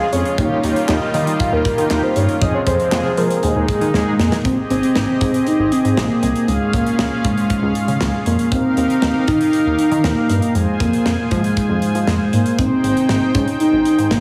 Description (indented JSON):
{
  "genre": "synth-pop",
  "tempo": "118 BPM",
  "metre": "4/4",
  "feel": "straight",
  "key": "Ab major",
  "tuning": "A4 = 440 Hz",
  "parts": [
    { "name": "soft octave-layered synth lead", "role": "melody", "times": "0.0-14.2 s", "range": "Ab3 to F5", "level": "-20 LUFS", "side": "equal", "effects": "chorus, tape echo" },
    { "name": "mellow synth brass", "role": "accompaniment", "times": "0.0-4.4 s", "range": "Ab3 to Bb4", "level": "-25 LUFS", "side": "equal", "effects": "chorus, tremolo" },
    { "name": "brassy analog pad", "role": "sustained chords", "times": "0.0-14.2 s", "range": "Bb2 to Ab5", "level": "-26 LUFS", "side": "equal", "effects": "chorus" },
    { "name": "chorused synth bass", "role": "bass", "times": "0.1-14.2 s", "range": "Ab1 to F3", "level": "-23 LUFS", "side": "equal", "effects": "none" },
    { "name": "modern studio drum kit", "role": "drums", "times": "0.1-14.2 s", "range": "handclaps, hi-hat, kick drum, snare drum", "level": "-26 LUFS", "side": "equal", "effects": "none" }
  ],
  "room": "moderate lush hall reverb, RT60 2.5 s",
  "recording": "heavily compressed radio sound, small room reverb",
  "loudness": "-17 LUFS",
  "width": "mono",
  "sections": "0.0-4.5 A section; 4.5-14.2 B section",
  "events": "drum fill 3.9-4.5",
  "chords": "0.4 Ebadd9; 2.4 Fm; 3.4 Ebsus4; 4.5 Abmaj7; 6.5 Db; 8.5 Ebadd9; 10.6 Fm; 12.6 Abmaj7",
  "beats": "| 0.38 0.89 1.40 1.91 | 2.42 2.92 3.43 3.94 | 4.45 4.96 5.47 5.97 | 6.48 6.99 7.50 8.01 | 8.52 9.03 9.53 10.04 | 10.55 11.06 11.57 12.08 | 12.59 13.09 13.60 14.11"
}